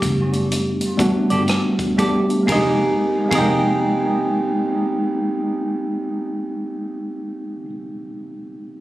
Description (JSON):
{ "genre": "R&B, neo-soul", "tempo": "59-63 BPM", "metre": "4/4", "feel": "swing 63% on 16ths", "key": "F minor", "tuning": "A4 = 439 Hz", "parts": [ { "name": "tine electric piano", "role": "accompaniment", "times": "0.0-8.8 s", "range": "G3 to G5", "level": "-20 LUFS", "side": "equal", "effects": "medium stereo tremolo" }, { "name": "vintage muted fingered electric bass", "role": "bass", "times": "0.0-7.6 s", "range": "F1 to G1", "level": "-25 LUFS", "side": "equal", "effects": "none" }, { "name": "compact cocktail drum kit", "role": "drums", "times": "0.0-3.6 s", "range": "hi-hat, kick drum, ride cymbal, rim click", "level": "-28 LUFS", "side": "equal", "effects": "none" }, { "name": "semi-hollow electric guitar", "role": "second line", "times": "1.3-7.7 s", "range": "G4 to Eb5", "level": "-24 LUFS", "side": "right 1 dB", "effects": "analog delay" } ], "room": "light reverb", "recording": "recorded on a phone in the room, studio reverb", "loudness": "-17 LUFS", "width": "side -16 dB against mid", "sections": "0.0-2.5 A section; 2.5-6.6 B section", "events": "slowing down 0.0-2.5", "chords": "0.0 Em11 (rootless); 2.5 Fm11" }